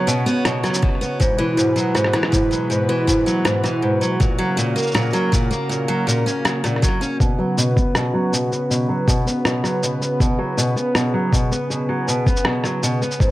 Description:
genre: folktronica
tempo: 80 BPM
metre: 4/4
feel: straight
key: unclear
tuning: A4 = 440 Hz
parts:
  - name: warm analog pad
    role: sustained chords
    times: 0.0-13.3 s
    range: B2 to C#5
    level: -23 LUFS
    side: right 1 dB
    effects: chorus, vintage 12-bit sampler grit
  - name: picked steel-string acoustic guitar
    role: arpeggios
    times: 0.0-13.3 s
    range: G#2 to C#4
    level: -20 LUFS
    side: equal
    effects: low-pass filter, tape echo
  - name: electronic cabasa and rim click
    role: drums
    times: 0.1-13.3 s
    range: none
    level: -23 LUFS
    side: equal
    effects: none
  - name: electronic kick drum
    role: drums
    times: 0.8-13.3 s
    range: none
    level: -18 LUFS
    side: equal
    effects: none
room: light reverb, digital ambience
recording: none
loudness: -17 LUFS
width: side -16 dB against mid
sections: 0.0-7.2 A section; 7.2-13.3 A section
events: filter sweep on steel-string acoustic guitar 7.2-13.3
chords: 0.0 Bsus2; 1.2 Eadd9; 4.2 F#; 7.2 Bsus2

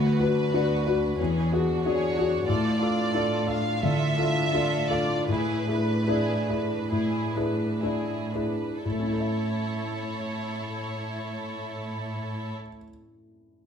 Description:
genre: classical, romantic movement for piano and orchestra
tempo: 57-94 BPM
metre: 4/4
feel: rubato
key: A major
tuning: A4 = 440 Hz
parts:
  - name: warm grand piano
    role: melody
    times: 0.0-13.7 s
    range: D2 to E5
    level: -26 LUFS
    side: left 2 dB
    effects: none
  - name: warm studio violin section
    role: melody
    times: 0.0-12.5 s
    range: B4 to F5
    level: -33 LUFS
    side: right 2 dB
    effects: none
  - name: warm studio violin section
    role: second line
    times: 0.0-12.5 s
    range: B3 to B4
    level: -34 LUFS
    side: right 2 dB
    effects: none
  - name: warm studio cello section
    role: bass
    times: 0.0-12.5 s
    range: D2 to A2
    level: -32 LUFS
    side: right 1 dB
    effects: none
room: wet stone room reverb, RT60 0.9 s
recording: none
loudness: -24 LUFS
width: side -7 dB against mid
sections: 0.0-8.8 A section; 8.8-12.7 B section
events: slowing down 1.2-8.8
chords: 0.0 Bm/D; 1.2 E13; 2.5 Dm/A

